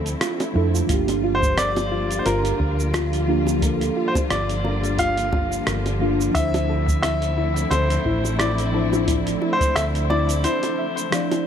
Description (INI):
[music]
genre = sunset chillout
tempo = 88 BPM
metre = 4/4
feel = swing 56% on 16ths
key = G dorian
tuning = A4 = 439 Hz
[part]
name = mellow FM electric piano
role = accompaniment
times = 0.0-11.5 s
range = F3 to D5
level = -26 LUFS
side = moving between left 4 dB and right 5 dB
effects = chorus, phaser, auto-pan
[part]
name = warm studio string section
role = sustained chords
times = 0.0-11.5 s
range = D3 to F4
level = -28 LUFS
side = left 1 dB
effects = none
[part]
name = soft round pluck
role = arpeggios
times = 0.0-11.4 s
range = E4 to F5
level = -29 LUFS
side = left 2 dB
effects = wide subtle chorus, ping-pong delay
[part]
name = hollow-body short-scale fingered electric bass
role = bass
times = 0.0-10.4 s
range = G1 to F2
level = -24 LUFS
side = equal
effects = none
[part]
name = dusty soul sampler-style drum kit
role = drums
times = 0.1-11.4 s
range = hi-hat, rim click, shaker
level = -28 LUFS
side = right 1 dB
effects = none
[part]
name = bongos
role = percussion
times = 0.4-11.4 s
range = none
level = -31 LUFS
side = right 2 dB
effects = none
[part]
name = electronic kick drum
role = drums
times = 0.9-9.7 s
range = none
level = -25 LUFS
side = equal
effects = none
[part]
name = bright grand piano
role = melody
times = 1.3-11.4 s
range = Bb4 to F5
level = -25 LUFS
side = left 1 dB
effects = vintage 12-bit sampler grit, ping-pong delay
[sound]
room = moderate concert hall reverb, RT60 2.5 s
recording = none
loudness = -19 LUFS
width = side -8 dB against mid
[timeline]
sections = 0.0-11.5 A section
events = break 10.4-11.5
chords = 0.0 Dm9; 0.9 Gm7; 6.3 Dm9